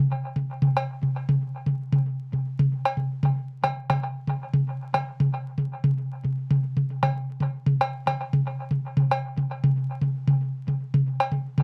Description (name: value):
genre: techno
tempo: 115 BPM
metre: 4/4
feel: swing 56% on 16ths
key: none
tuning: none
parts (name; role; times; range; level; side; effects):
- electronic toms and cowbell; percussion; 0.4-11.6 s; none; -26 LUFS; equal; cassette tape, dub echo
room: wet small room ambience, RT60 0.5 s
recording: home recording on cassette, vinyl crackle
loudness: -26 LUFS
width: mono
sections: 0.0-11.6 A section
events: none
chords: none